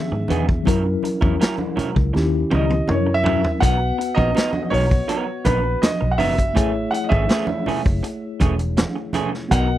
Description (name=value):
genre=lush 1970s-style soul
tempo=81 BPM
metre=4/4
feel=straight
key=B major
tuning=A4 = 441 Hz
part: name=warm concert grand piano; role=melody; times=0.0-9.8 s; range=B4 to F#5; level=-23 LUFS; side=right 1 dB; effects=tape echo
part: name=mellow tine electric piano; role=accompaniment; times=0.0-9.8 s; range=D#3 to F#5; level=-25 LUFS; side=left 4 dB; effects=medium stereo tremolo
part: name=electric guitar through a small old amp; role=riff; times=0.1-9.7 s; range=E3 to A#4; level=-26 LUFS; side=right 5 dB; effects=none
part: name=vintage muted fingered electric bass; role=bass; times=0.1-9.8 s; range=E1 to G#2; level=-22 LUFS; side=equal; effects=none
part: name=vintage drum kit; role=drums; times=0.3-9.7 s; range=hi-hat, kick drum, snare drum, toms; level=-21 LUFS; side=equal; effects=none
part: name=congas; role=percussion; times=0.3-9.7 s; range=none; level=-29 LUFS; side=right 4 dB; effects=none
room=little or no reverb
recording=dry, close 1970s-style studio recording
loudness=-17 LUFS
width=side -13 dB against mid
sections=0.0-3.6 A section; 3.6-9.8 B section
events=grand piano solo 0.0-3.6; drum fill 2.1-3.6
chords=0.0 Emaj7; 0.7 F#7; 2.1 D#7b9; 2.9 F#7; 3.6 Bmaj7; 6.6 Amaj7